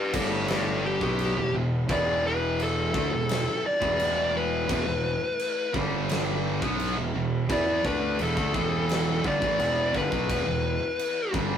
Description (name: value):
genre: stoner and doom metal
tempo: 86 BPM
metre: 4/4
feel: straight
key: E minor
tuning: A4 = 436 Hz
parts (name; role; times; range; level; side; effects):
- fuzz lead guitar; melody; 0.0-11.3 s; E4 to D5; -27 LUFS; left 2 dB; distortion
- tonewheel organ; sustained chords; 0.0-11.6 s; E3 to A4; -42 LUFS; right 2 dB; none
- high-gain distorted guitar; riff; 0.1-11.6 s; E2 to E4; -31 LUFS; equal; distortion
- thick fuzz guitar; riff; 0.1-11.6 s; E2 to E4; -33 LUFS; left 1 dB; distortion
- thick fuzz guitar; riff; 0.1-11.6 s; E2 to E4; -36 LUFS; right 7 dB; none
- fuzz fingered electric bass; bass; 0.1-11.6 s; E1 to E2; -32 LUFS; right 1 dB; overdrive
- big rock drum kit; drums; 0.1-11.5 s; crash cymbal, kick drum, snare drum; -32 LUFS; equal; none
room: moderate studio reverb, RT60 0.6 s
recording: rough rehearsal-room recording, warm saturation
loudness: -24 LUFS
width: side -8 dB against mid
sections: 0.0-11.6 A section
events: lead electric guitar solo 0.0-11.6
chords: 0.1 G5; 1.0 E5; 5.7 G5; 6.6 Em